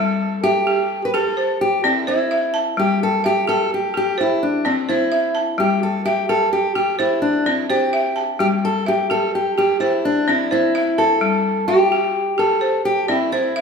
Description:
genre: west african traditional, West African string and xylophone music.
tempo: 85 BPM (dotted quarters).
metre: 12/8.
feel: straight.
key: unclear.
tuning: A4 = 442 Hz.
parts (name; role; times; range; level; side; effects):
fingerpicked steel-string acoustic guitar; melody; 0.0-13.6 s; C4 to B4; -18 LUFS; left 1 dB; none.
balafon; arpeggios; 0.0-13.6 s; G3 to A5; -20 LUFS; equal; none.
room: wet recital hall reverb, RT60 1.5 s.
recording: minimal, uncompressed stereo recording.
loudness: -16 LUFS.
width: side -5 dB against mid.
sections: 0.0-13.6 A section.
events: none.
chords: 0.0 Gsus2; 1.4 C; 2.8 Emadd11/G; 4.2 C; 5.6 Emadd11/G; 7.0 C; 8.4 Emadd11/G; 9.8 C; 11.2 Emadd11/G; 12.6 C.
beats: 0.67 1.37 2.07 | 2.77 3.48 4.18 4.88 | 5.59 6.29 7.00 7.70 | 8.40 9.10 9.81 10.51 | 11.21 11.91 12.62 13.32.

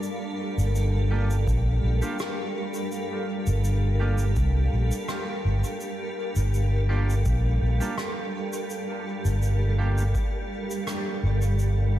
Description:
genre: ambient dub.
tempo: 83 BPM.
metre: 4/4.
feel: straight.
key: G minor.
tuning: A4 = 441 Hz.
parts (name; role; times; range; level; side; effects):
granular cloud pad; sustained chords; 0.0-12.0 s; G3 to F5; -31 LUFS; right 1 dB; built-in reverb.
shaker and rim click; drums; 0.0-11.7 s; none; -39 LUFS; equal; small room ambience, dub echo.
wind-like tuned noise texture; texture; 0.0-12.0 s; D4 to G5; -39 LUFS; left 2 dB; built-in reverb.
fingered electric bass with an envelope filter; bass; 0.6-12.0 s; G1 to C2; -22 LUFS; equal; none.
clean electric guitar; stabs; 1.1-10.0 s; Bb3 to G4; -38 LUFS; right 3 dB; analog chorus, dub echo.
electronic kick drum; drums; 1.5-10.3 s; none; -28 LUFS; equal; overdrive, small room ambience.
room: small room ambience.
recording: none.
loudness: -23 LUFS.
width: side -13 dB against mid.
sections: 0.0-12.0 A section.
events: none.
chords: 0.0 Gm7.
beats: | 0.03 0.75 1.48 2.20 | 2.92 3.65 4.37 5.09 | 5.81 6.54 7.26 7.98 | 8.71 9.43 10.15 10.87 | 11.60.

